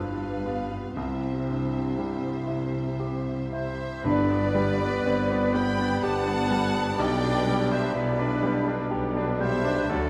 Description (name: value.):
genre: classical, romantic movement for piano and orchestra.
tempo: 60 BPM.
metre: 3/4.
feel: uneven beats, rubato.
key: C major, G major from 4.0 s.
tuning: A4 = 443 Hz.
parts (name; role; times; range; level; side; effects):
clear concert grand piano; melody; 0.0-10.1 s; B1 to G4; -31 LUFS; equal; none.
rich chamber violin section; melody; 0.0-10.1 s; D5 to B5; -40 LUFS; equal; none.
mellow clarinet; second line; 0.0-10.1 s; B3 to D4; -37 LUFS; equal; none.
rich chamber violin section; second line; 0.0-10.1 s; A4 to G5; -38 LUFS; equal; none.
rich chamber viola section; accompaniment; 0.0-10.1 s; G3 to D5; -39 LUFS; equal; none.
dark French horn section; sustained chords; 0.0-10.1 s; F#3 to F4; -37 LUFS; equal; none.
rich chamber double bass section; bass; 0.0-10.1 s; G1 to D2; -37 LUFS; equal; none.
warm chamber cello section; bass; 0.0-10.1 s; G2 to D3; -37 LUFS; equal; none.
mellow wooden flute; second line; 3.5-10.1 s; D5 to B5; -37 LUFS; equal; none.
warm oboe; second line; 3.5-10.1 s; A4 to G5; -37 LUFS; equal; none.
warm bassoon; accompaniment; 4.0-10.1 s; F#3 to G3; -38 LUFS; equal; none.
warm tuba; bass; 4.0-10.1 s; G1 to D2; -36 LUFS; equal; none.
timpani; percussion; 4.0-5.5 s; G2; -39 LUFS; equal; none.
room: moderate scoring stage reverb, RT60 1.9 s.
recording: none.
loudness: -26 LUFS.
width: mono.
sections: 0.0-4.0 A section; 4.0-10.1 B section.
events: none.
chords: 0.0 G7; 1.0 C; 4.0 G; 7.0 G/B.